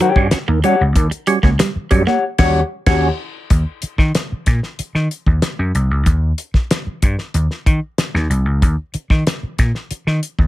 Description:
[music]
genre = funk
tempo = 94 BPM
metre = 4/4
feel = straight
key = Eb mixolydian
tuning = A4 = 440 Hz
[part]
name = mellow electric guitar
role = accompaniment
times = 0.0-3.1 s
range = G4 to G5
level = -17 LUFS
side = left 6 dB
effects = none
[part]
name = clean electric guitar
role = riff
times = 0.0-2.2 s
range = F#3 to Bb3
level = -20 LUFS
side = right 6 dB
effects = none
[part]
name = percussive tonewheel organ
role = stabs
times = 0.0-3.1 s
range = Eb3 to F#4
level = -19 LUFS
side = right 4 dB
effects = chorus vibrato, slow rotary speaker
[part]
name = vintage slap bass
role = bass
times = 0.2-10.5 s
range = C2 to Eb3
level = -17 LUFS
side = equal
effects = none
[part]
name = damped 70s drum kit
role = drums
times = 0.2-10.5 s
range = crash cymbal, hi-hat, kick drum, snare drum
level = -17 LUFS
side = equal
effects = none
[sound]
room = little or no reverb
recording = none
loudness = -15 LUFS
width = side -16 dB against mid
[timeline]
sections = 0.0-3.5 A section; 3.5-10.5 B section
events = band accent 2.2-3.5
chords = 0.0 Eb7#9; 3.5 N.C.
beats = 0.32 | 0.96 1.60 2.23 2.87 | 3.51 4.15 4.79 5.43 | 6.07 6.70 7.34 7.98 | 8.62 9.26 9.90

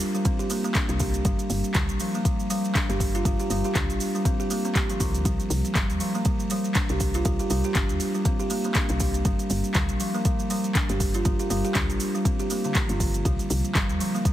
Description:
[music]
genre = afro house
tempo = 120 BPM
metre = 4/4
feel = swing 57% on 16ths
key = G minor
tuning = A4 = 437 Hz
[part]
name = afro-pop drum kit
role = drums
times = 0.0-14.3 s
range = handclaps, hi-hat, shaker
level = -30 LUFS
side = equal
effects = none
[part]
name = buzzing kalimba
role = arpeggios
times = 0.1-14.3 s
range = D3 to G4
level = -27 LUFS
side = right 1 dB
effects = sidechain pumping, tape echo
[part]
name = electronic kick drum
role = drums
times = 0.3-14.3 s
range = none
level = -25 LUFS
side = equal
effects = none
[part]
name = woody FM bass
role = bass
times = 0.9-14.0 s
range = G1 to Eb2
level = -28 LUFS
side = equal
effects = sidechain pumping
[sound]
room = light reverb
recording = heavily compressed radio sound, multiband compression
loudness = -22 LUFS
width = side -13 dB against mid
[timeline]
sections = 0.0-14.3 A section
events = none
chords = 0.0 C7(no3); 1.3 G5; 5.3 C5; 9.3 G5; 13.3 C5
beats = 0.25 0.75 | 1.25 1.75 2.25 2.75 | 3.25 3.75 4.25 4.75 | 5.25 5.75 6.25 6.75 | 7.25 7.75 8.25 8.75 | 9.25 9.75 10.25 10.75 | 11.25 11.75 12.25 12.75 | 13.25 13.75 14.25

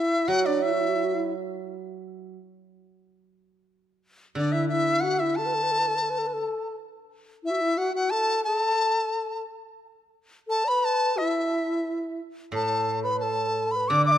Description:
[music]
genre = chinese traditional, Chinese chamber ensemble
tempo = 88 BPM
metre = 2/4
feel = rubato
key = A zhi mode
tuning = A4 = 443 Hz
[part]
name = mellow dizi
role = melody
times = 0.0-1.3, 4.4-14.2 s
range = D5 to D6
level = -25 LUFS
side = equal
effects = none
[part]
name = bright reedy low xiao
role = second line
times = 0.0-1.3, 4.4-14.2 s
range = D4 to E5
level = -28 LUFS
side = left 2 dB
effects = none
[part]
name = steel-string zither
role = accompaniment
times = 0.3-6.4, 12.5-14.2 s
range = A2 to F#3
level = -29 LUFS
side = right 4 dB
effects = none
[sound]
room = light reverb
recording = close, detailed microphones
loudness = -23 LUFS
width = side -11 dB against mid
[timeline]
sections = 0.0-7.1 A section; 7.1-14.2 B section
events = none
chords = none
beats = | 0.29 0.98 | 1.67 2.36 | 3.04 3.71 | 4.38 5.05 | 5.73 6.42 | 7.11 7.79 | 8.47 9.14 | 9.81 10.48 | 11.17 11.86 | 12.54 13.23 | 13.91

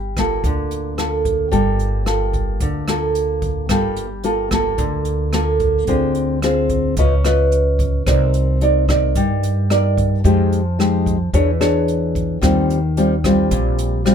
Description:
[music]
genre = bossa nova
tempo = 110 BPM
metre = 4/4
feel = straight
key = G minor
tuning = A4 = 442 Hz
[part]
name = nylon-string guitar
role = accompaniment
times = 0.0-14.1 s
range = Bb2 to D#5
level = -18 LUFS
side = equal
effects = none
[part]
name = upright bass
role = bass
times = 0.0-14.1 s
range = G1 to G2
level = -20 LUFS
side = right 1 dB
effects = none
[part]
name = jazz brush drum kit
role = drums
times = 0.2-14.1 s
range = hi-hat, kick drum, rim click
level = -25 LUFS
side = right 1 dB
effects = none
[sound]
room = little or no reverb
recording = close, detailed microphones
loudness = -15 LUFS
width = side -8 dB against mid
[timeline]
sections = 0.0-3.7 A section; 3.7-14.1 B section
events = none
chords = 0.0 Gm9; 5.9 Dm7b5; 7.0 C#9; 8.1 Cm9; 10.2 Fm9; 11.3 E6; 12.4 Eb69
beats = 0.44 0.98 | 1.53 2.07 2.62 3.16 | 3.71 4.25 4.79 5.34 | 5.88 6.43 6.97 7.52 | 8.06 8.61 9.15 9.70 | 10.24 10.79 11.33 11.88 | 12.43 12.97 13.52 14.06

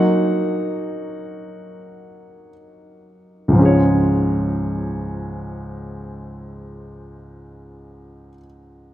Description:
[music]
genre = pop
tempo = free time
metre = none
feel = none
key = Db major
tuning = A4 = 440 Hz
[part]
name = warm baby grand piano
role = accompaniment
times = 0.0-8.9 s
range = Db2 to Gb5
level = -18 LUFS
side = equal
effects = none
[sound]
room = moderate plate reverb, RT60 3.0 s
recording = none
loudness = -17 LUFS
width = side -13 dB against mid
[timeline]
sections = 0.0-3.6 A section; 3.6-7.8 B section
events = slowing down 0.0-3.6; grand piano solo 0.0-3.6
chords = 0.0 Ebm; 3.6 Db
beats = free time

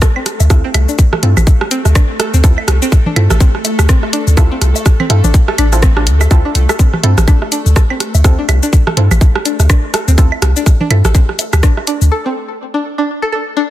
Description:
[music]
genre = minimal techno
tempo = 124 BPM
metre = 4/4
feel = swing 59% on 16ths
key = D minor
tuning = A4 = 440 Hz
[part]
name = string-like resonator pluck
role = riff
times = 0.0-13.6 s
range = C4 to A4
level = -20 LUFS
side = left 1 dB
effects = chorus, sidechain pumping, ping-pong delay
[part]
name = electronic kick drum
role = drums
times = 0.0-11.7 s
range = none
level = -9 LUFS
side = equal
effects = none
[part]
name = garage drum kit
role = drums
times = 0.0-12.1 s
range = cabasa, hi-hat, rim click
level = -19 LUFS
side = left 2 dB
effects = soft clipping on snare
[part]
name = electronic rim click, woodblock and congas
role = percussion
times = 0.0-11.9 s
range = none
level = -19 LUFS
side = right 4 dB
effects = soft clipping on snare, tape echo
[part]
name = pulsing gated texture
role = texture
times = 0.0-12.1 s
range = A3 to A4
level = -26 LUFS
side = left 2 dB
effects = chorus, built-in reverb, sidechain pumping
[part]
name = punchy sub bass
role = bass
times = 0.4-12.1 s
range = A1 to G2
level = -10 LUFS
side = equal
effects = sidechain pumping
[part]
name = filtered dub chord stab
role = stabs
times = 0.5-11.0 s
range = C4 to A4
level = -24 LUFS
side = right 4 dB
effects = chorus, tape echo
[sound]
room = little or no reverb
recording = dense, heavily limited modern master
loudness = -9 LUFS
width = side -14 dB against mid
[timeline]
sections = 0.0-13.7 A section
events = break 12.1-13.7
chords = 0.0 D7(no3)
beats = 0.02 | 0.50 0.99 1.47 1.95 | 2.44 2.92 3.40 3.89 | 4.37 4.86 5.34 5.83 | 6.31 6.79 7.28 7.76 | 8.24 8.73 9.21 9.70 | 10.18 10.66 11.15 11.63 | 12.12 12.60 13.08 13.57

